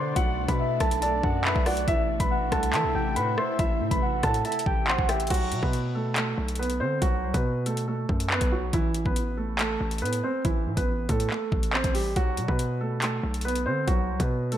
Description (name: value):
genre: hip hop, drill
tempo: 140 BPM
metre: 4/4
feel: half-time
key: B phrygian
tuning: A4 = 440 Hz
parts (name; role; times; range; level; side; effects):
- dark concert grand piano; melody; 0.0-14.6 s; E3 to C6; -28 LUFS; right 1 dB; tape echo
- soft octave-layered synth lead; second line; 0.0-5.3 s; D5 to G5; -32 LUFS; equal; chorus, phaser, tape echo
- ethereal airy pad; sustained chords; 0.0-5.3 s; B2 to E4; -35 LUFS; equal; ensemble chorus, built-in reverb
- hard-hitting 808-style bass; bass; 0.0-14.6 s; A1 to E3; -30 LUFS; equal; none
- drill drum kit; drums; 0.2-14.6 s; crash cymbal, handclaps, hi-hat, kick drum, rim click; -28 LUFS; equal; none
room: moderate plate reverb, RT60 2.0 s, digital ambience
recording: dreamy mix soaked in reverb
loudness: -23 LUFS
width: side -11 dB against mid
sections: 0.0-5.3 A section; 5.3-14.6 B section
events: none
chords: 0.0 Bm7; 1.9 Am; 5.3 B7(no3); 8.7 Am; 12.2 B7(no3)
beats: | 0.16 0.59 1.02 1.45 | 1.88 2.31 2.73 3.16 | 3.59 4.02 4.45 4.88 | 5.30 5.73 6.16 6.59 | 7.02 7.45 7.88 8.30 | 8.73 9.16 9.59 10.02 | 10.45 10.88 11.30 11.73 | 12.16 12.59 13.02 13.45 | 13.88 14.30